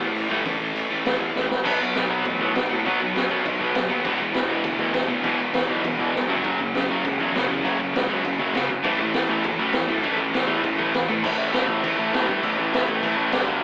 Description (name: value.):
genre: punk rock.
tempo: 200 BPM.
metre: 4/4.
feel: straight.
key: unclear.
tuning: A4 = 439 Hz.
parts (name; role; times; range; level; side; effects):
distorted electric guitar; riff; 0.0-11.2 s; E2 to B3; -25 LUFS; equal; distortion.
fuzz picked electric bass; bass; 0.0-13.6 s; E1 to A2; -29 LUFS; equal; overdrive.
raw garage drum kit; drums; 0.2-13.5 s; crash cymbal, hi-hat, kick drum, snare drum, toms; -25 LUFS; equal; none.
distorted electric guitar; riff; 0.3-13.6 s; E2 to B3; -25 LUFS; equal; overdrive.
room: light reverb.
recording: band playing live in one room, AM radio sound.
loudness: -20 LUFS.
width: side -30 dB against mid.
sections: 0.0-1.6 A section; 1.6-11.2 B section; 11.2-13.6 C section.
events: half time 0.0-1.6; drum fill 1.4, 6.1.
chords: 0.0 A5; 1.6 B5; 4.0 E5; 6.3 F#5; 8.8 A5; 13.3 G5.